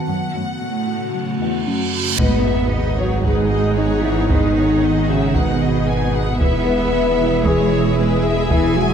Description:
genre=cinematic, hybrid orchestral and electronic film score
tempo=114 BPM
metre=4/4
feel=straight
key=unclear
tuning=A4 = 440 Hz
part: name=warm symphonic violin section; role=melody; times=0.0-8.9 s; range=E5 to F#5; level=-32 LUFS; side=left 2 dB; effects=none
part: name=ethereal airy pad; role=sustained chords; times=0.0-8.9 s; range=C#3 to F#5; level=-24 LUFS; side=equal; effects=ensemble chorus, built-in reverb
part: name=felt-muted upright piano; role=texture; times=0.0-8.9 s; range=E4 to D#6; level=-34 LUFS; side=equal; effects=none
part: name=harp-like synth pluck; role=arpeggios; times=0.1-8.9 s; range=E3 to F#4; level=-27 LUFS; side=left 1 dB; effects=chorus, ping-pong delay
part: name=rich symphonic cello section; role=bass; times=0.1-8.9 s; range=E2 to B3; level=-24 LUFS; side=right 4 dB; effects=none
part: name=reverse cymbal and sub drop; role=sound effects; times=1.4-4.3 s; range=none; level=-25 LUFS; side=right 2 dB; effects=none
part: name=warm symphonic violin section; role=second line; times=2.2-8.9 s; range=B4 to G#5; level=-27 LUFS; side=left 2 dB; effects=none
part: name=clear symphonic viola section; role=accompaniment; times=2.2-8.9 s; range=D#4 to G#4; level=-26 LUFS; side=right 2 dB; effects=none
part: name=mellow French horn section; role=sustained chords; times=2.2-8.9 s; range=B3 to B4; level=-21 LUFS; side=left 4 dB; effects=none
part: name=clear studio double bass section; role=bass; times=2.2-8.9 s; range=E1 to G#1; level=-24 LUFS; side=right 5 dB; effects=none
part: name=detuned saw bass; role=bass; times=2.2-8.9 s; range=E1 to G#1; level=-24 LUFS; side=right 1 dB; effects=none
part: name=solo taiko drums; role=drums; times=2.2-8.9 s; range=none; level=-22 LUFS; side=right 1 dB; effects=none
room=wet scoring stage reverb, RT60 1.6 s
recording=none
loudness=-15 LUFS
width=side -8 dB against mid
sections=0.0-2.2 A section; 2.2-8.9 A section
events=reverse cymbal 1.4-2.2; impact 2.2-4.3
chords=0.1 F#m; 2.2 G#m7; 6.4 E

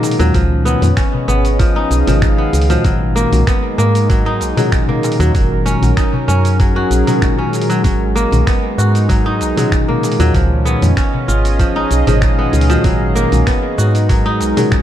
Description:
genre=organic downtempo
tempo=96 BPM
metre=4/4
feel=swing 53% on 16ths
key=G# dorian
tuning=A4 = 440 Hz
part: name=tine electric piano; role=accompaniment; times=0.0-14.8 s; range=A#2 to A#4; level=-19 LUFS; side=left 1 dB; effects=phaser, sidechain pumping, digital delay
part: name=warm analog pad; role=sustained chords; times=0.0-14.8 s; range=F#3 to E#5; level=-21 LUFS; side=right 1 dB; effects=chorus, sidechain pumping
part: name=kora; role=arpeggios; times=0.0-14.8 s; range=E#3 to F#4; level=-18 LUFS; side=left 1 dB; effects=digital delay
part: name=dusty soul sampler-style drum kit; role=drums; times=0.0-14.8 s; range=finger snaps, hi-hat, shaker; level=-26 LUFS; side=right 2 dB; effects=none
part: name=darbuka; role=percussion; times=0.0-14.7 s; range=none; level=-24 LUFS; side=left 3 dB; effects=none
part: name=woody FM bass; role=bass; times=0.2-14.5 s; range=F#1 to G#2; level=-15 LUFS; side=equal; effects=sidechain pumping
part: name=electronic kick drum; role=drums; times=0.3-14.8 s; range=none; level=-15 LUFS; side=equal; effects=none
room=light reverb, digital ambience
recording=dark, warm production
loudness=-11 LUFS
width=side -11 dB against mid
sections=0.0-14.8 A section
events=none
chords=0.0 G#m9; 5.3 F#6; 7.8 G#m9

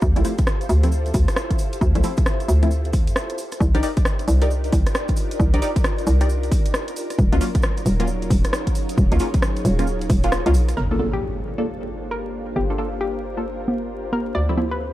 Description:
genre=UK garage, two-step garage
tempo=134 BPM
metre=4/4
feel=swing 63% on 16ths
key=G minor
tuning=A4 = 441 Hz
part: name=soft string machine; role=sustained chords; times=0.0-14.9 s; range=Gb3 to C5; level=-33 LUFS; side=equal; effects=ensemble chorus, sidechain pumping
part: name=hollow knocking FM bass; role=bass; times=0.0-14.9 s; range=Eb1 to G2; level=-20 LUFS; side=equal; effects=none
part: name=electronic kick drum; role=drums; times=0.0-10.2 s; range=none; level=-20 LUFS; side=equal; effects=overdrive
part: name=cabasa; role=percussion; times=0.0-10.8 s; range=none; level=-40 LUFS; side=right 3 dB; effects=none
part: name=ethereal airy pad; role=texture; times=0.0-14.9 s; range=Eb4 to F5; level=-32 LUFS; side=equal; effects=ensemble chorus, built-in reverb, sidechain pumping
part: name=punchy chord stab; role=stabs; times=0.2-14.7 s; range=F3 to D5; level=-26 LUFS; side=equal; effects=chorus, phaser, tape echo
part: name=house drum kit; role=drums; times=0.2-14.7 s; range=congas, hi-hat, rim click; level=-27 LUFS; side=equal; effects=overdrive, low-pass filter on snare, low-pass filter on hats, low-pass filter on cymbals, low-pass filter on perc, low-pass filter on room
part: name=hollow square pluck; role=melody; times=10.8-14.9 s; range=G4 to D5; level=-29 LUFS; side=left 3 dB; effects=chorus, dub echo
part: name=impact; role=sound effects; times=10.8-12.6 s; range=none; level=-30 LUFS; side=equal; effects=none
room=digital ambience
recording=vinyl crackle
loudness=-18 LUFS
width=side -15 dB against mid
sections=0.0-10.8 A section; 10.8-14.9 B section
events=filter sweep on synth stab 0.0-10.8; kick drops out 10.3-10.8; band accent 10.3; impact 10.8-12.6; filter sweep on drum 10.8-14.9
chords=0.0 Dm7; 3.4 Cm7; 7.0 Ebm7; 10.8 Gm7; 14.4 Dm7

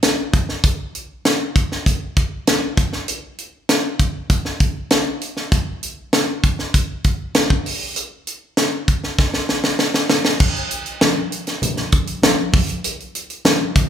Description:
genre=pop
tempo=98 BPM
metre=4/4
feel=straight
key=none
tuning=none
part: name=tight funk drum kit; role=drums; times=0.0-13.9 s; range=crash cymbal, hi-hat, kick drum, snare drum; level=-16 LUFS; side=equal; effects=none
part: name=congas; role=percussion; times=10.4-13.9 s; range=none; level=-25 LUFS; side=equal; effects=none
room=moderate large studio reverb, RT60 1.3 s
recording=band playing live in one room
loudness=-17 LUFS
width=side -9 dB against mid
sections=0.0-10.4 A section; 10.4-13.9 B section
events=drum fill 9.2-10.4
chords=none

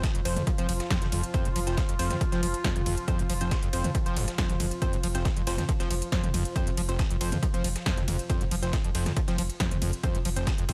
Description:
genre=driving peak-time techno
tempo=138 BPM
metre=4/4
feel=straight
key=unclear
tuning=A4 = 440 Hz
part: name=screaming distorted acid line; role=riff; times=0.0-10.7 s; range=F1 to F3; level=-36 LUFS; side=equal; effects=distortion, analog chorus, sidechain pumping, tape echo
part: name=wavetable chord stab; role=stabs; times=0.0-10.7 s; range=F3 to C5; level=-38 LUFS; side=equal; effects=sidechain pumping, tape echo
part: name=saturated sub bass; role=bass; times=0.0-10.7 s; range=F1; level=-35 LUFS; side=equal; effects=tube saturation, sidechain pumping, low-pass filter
part: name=deep dark ambient pad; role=drone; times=0.0-10.7 s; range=F3 to F4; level=-40 LUFS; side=equal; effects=chorus, built-in reverb, sidechain pumping
part: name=breakbeat sampler-style drum kit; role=drums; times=0.0-10.7 s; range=hi-hat, snare drum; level=-43 LUFS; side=equal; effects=high-pass filter on snare, sidechain pumping on hats, high-pass filter on hats
part: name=electronic kick drum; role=drums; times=0.0-10.7 s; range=none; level=-31 LUFS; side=equal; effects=none
part: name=techno drum kit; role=drums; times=0.0-10.7 s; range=hi-hat, ride cymbal, snare drum, toms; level=-37 LUFS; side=equal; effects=sidechain pumping on hats, sidechain pumping on toms, sidechain pumping on cymbals
room=digital ambience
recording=none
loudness=-28 LUFS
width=mono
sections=0.0-10.7 A section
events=none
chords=0.0 F5

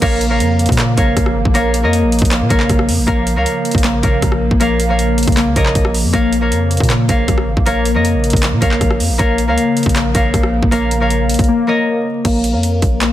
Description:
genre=hip hop, trap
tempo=157 BPM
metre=4/4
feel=half-time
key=Bb minor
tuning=A4 = 440 Hz
part: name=concert harp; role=accompaniment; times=0.0-13.1 s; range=Bb3 to F5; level=-18 LUFS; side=equal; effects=low-pass filter
part: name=hollow soft pad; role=sustained chords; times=0.0-12.2 s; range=Db3 to Bb3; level=-24 LUFS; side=right 1 dB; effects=ensemble chorus
part: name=warbly lo-fi synth keys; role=arpeggios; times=0.0-13.1 s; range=Bb3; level=-19 LUFS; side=left 2 dB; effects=chorus, low-pass filter, tape echo
part: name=long sustained 808-style bass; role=bass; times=0.0-13.1 s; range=Ab1 to Bb2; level=-17 LUFS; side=equal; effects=none
part: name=trap drum kit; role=drums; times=0.0-13.1 s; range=crash cymbal, handclaps, hi-hat, kick drum, rim click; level=-17 LUFS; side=equal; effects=overdrive
room=light reverb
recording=dense, heavily limited modern master, vinyl crackle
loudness=-12 LUFS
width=side -13 dB against mid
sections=0.0-12.2 A section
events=silent gap 11.5-12.2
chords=0.0 Bbm

